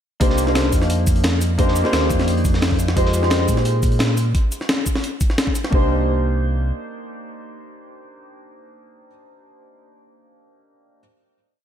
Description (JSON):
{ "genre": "liquid drum and bass", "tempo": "174 BPM", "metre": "4/4", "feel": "straight", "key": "C minor", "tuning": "A4 = 436 Hz", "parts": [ { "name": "dark baby grand piano", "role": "accompaniment", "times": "0.2-11.0 s", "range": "Ab3 to C5", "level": "-22 LUFS", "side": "equal", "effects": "wide subtle chorus, analog delay" }, { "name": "sub bass with octave", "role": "bass", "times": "0.2-6.7 s", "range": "C2 to Bb2", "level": "-20 LUFS", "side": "equal", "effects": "none" }, { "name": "breakbeat sampler-style drum kit", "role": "drums", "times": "0.2-5.7 s", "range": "cabasa, hi-hat, snare drum", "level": "-23 LUFS", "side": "left 1 dB", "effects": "none" }, { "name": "crunchy breakbeat drum kit", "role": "drums", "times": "0.2-4.3 s", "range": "hi-hat, snare drum", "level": "-32 LUFS", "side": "equal", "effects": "high-pass filter on hats, high-pass filter on snare, high-pass filter on room" }, { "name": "electronic kick drum", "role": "drums", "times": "0.2-5.8 s", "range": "none", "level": "-20 LUFS", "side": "equal", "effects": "none" } ], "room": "light reverb", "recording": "none", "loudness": "-16 LUFS", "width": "side -9 dB against mid", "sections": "0.2-5.7 drop; 5.7-8.5 final chord", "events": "drop 0.2-5.7", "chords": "0.2 Cm9; 3.0 Fm9; 5.7 Cm9" }